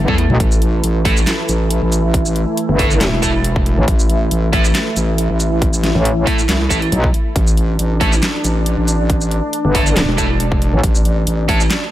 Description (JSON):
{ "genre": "heavy wobble dubstep", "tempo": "138 BPM", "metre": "4/4", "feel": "swing 54% on 16ths, half-time", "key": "unclear", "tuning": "A4 = 443 Hz", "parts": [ { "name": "supersaw pad", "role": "sustained chords", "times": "0.0-11.9 s", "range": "E3 to A4", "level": "-22 LUFS", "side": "equal", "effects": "phaser, sidechain pumping, low-pass filter" }, { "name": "metallic wobble bass", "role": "bass", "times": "0.0-10.8 s", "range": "G1 to B1", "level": "-15 LUFS", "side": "equal", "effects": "chorus, overdrive" }, { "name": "thick fuzz guitar", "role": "stabs", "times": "0.1-11.6 s", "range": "A3 to A4", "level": "-22 LUFS", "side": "right 2 dB", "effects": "distortion, tape echo" }, { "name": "wobble bass", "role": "bass", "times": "0.1-11.7 s", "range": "E1 to E2", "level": "-17 LUFS", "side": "equal", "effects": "chorus, overdrive" }, { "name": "dubstep drum kit", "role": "drums", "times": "0.1-11.8 s", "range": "handclaps, hi-hat, shaker, snare drum, toms", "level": "-21 LUFS", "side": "equal", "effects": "overdrive" }, { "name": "electronic kick drum", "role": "drums", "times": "0.1-11.6 s", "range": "none", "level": "-17 LUFS", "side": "equal", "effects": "overdrive" } ], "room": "digital ambience", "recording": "none", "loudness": "-13 LUFS", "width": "side -14 dB against mid", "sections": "0.0-11.9 A section", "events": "drum fill 0.0-0.4", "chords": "0.0 A5", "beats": "| 0.40 0.83 1.27 1.70 | 2.14 2.57 3.01 3.44 | 3.88 4.31 4.75 5.18 | 5.62 6.05 6.49 6.92 | 7.36 7.79 8.23 8.66 | 9.10 9.53 9.96 10.40 | 10.84 11.27 11.70" }